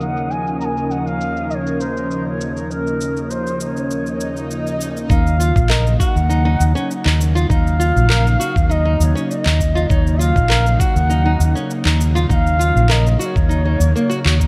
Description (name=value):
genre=organic downtempo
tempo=100 BPM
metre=4/4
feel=swing 53% on 16ths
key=Eb minor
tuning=A4 = 440 Hz
part: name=mellow bansuri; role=melody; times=0.0-14.4 s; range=Bb4 to Bb5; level=-26 LUFS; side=equal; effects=tape echo
part: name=airy breathy pad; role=sustained chords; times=0.0-14.5 s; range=Eb2 to Bb4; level=-26 LUFS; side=equal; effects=chorus, sidechain pumping
part: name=electronic cabasa and handclaps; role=drums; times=0.0-14.5 s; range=none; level=-26 LUFS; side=equal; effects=none
part: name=wind-like tuned noise texture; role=texture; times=0.0-5.1 s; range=Eb4 to Eb5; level=-36 LUFS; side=equal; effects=built-in reverb
part: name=swell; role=sound effects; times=4.1-5.1 s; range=none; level=-32 LUFS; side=equal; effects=none
part: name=nylon-string guitar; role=arpeggios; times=5.1-14.5 s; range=Bb3 to Bb4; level=-26 LUFS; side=equal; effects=tape echo
part: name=mellow fretless electric bass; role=bass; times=5.1-14.5 s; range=Bb1 to Eb2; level=-18 LUFS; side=equal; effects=subtle chorus, sidechain pumping
part: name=electronic kick drum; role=drums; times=5.1-14.5 s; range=none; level=-20 LUFS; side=equal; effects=none
room=light reverb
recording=dark, warm production, low-pass filter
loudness=-17 LUFS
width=mono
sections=0.0-5.1 A section; 5.1-14.5 B section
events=filter sweep 0.0-5.1; swell 4.1-5.1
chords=0.0 Bbm/Eb; 5.1 Ebm7